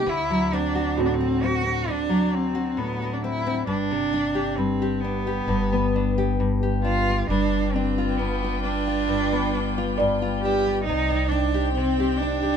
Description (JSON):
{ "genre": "acoustic folk-pop ballad", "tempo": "67 BPM", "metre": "4/4", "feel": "straight", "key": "unclear", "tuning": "A4 = 442 Hz", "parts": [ { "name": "rich cello", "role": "second line", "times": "0.0-12.6 s", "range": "B3 to G4", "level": "-25 LUFS", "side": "right 2 dB", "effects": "none" }, { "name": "nylon-string guitar", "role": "accompaniment", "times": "0.0-12.6 s", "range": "G2 to G4", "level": "-25 LUFS", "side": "left 3 dB", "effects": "none" }, { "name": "felt-muted upright piano", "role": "arpeggios", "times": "0.0-4.1, 10.0-11.3 s", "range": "F#4 to D5", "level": "-29 LUFS", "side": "right 4 dB", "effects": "none" }, { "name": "upright bass", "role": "bass", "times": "0.0-12.6 s", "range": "G1 to D2", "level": "-29 LUFS", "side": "equal", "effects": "none" }, { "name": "warm chamber string section", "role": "sustained chords", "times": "7.3-12.6 s", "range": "F4 to G5", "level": "-31 LUFS", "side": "left 1 dB", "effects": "none" } ], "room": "moderate small room reverb, RT60 0.5 s", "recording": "minimal, uncompressed stereo recording", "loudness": "-21 LUFS", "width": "side -7 dB against mid", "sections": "0.0-12.6 A section", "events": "cello solo 0.0-12.6", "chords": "0.1 D7; 3.7 Gsus4; 5.5 G; 7.3 G7; 10.9 Cmadd9", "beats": "| 0.08 0.97 1.87 2.77 | 3.67 4.57 5.47 6.38 | 7.29 8.19 9.08 9.98 | 10.88 11.77" }